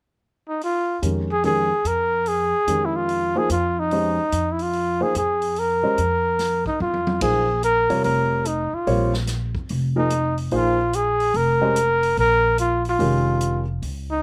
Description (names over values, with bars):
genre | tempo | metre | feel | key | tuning
modal jazz | 145 BPM | 4/4 | swing 65% on 8ths | Bb dorian | A4 = 440 Hz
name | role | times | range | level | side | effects
breathy trumpet | melody | 0.5-14.2 s | Eb4 to Bb4 | -23 LUFS | equal | slapback echo
swinging big-band drum kit | drums | 0.6-13.9 s | hi-hat, kick drum, ride cymbal, snare drum, toms | -35 LUFS | equal | none
warm grand piano | accompaniment | 1.0-13.6 s | C3 to Eb5 | -27 LUFS | equal | none
upright bass | bass | 1.0-14.2 s | F1 to F2 | -28 LUFS | equal | none
room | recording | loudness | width
little or no reverb | none | -21 LUFS | mono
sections
0.6-7.2 A section; 7.2-14.2 B section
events
drum fill 6.8-7.2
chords
0.0 N.C.; 0.6 Bbm7; 7.2 Bbm9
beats
0.20 | 0.61 1.02 1.44 1.85 | 2.26 2.67 3.09 3.50 | 3.91 4.33 4.74 5.15 | 5.57 5.98 6.39 6.80 | 7.21 7.63 8.04 8.45 | 8.87 9.28 9.69 10.10 | 10.52 10.93 11.34 11.76 | 12.17 12.58 12.99 13.41 | 13.82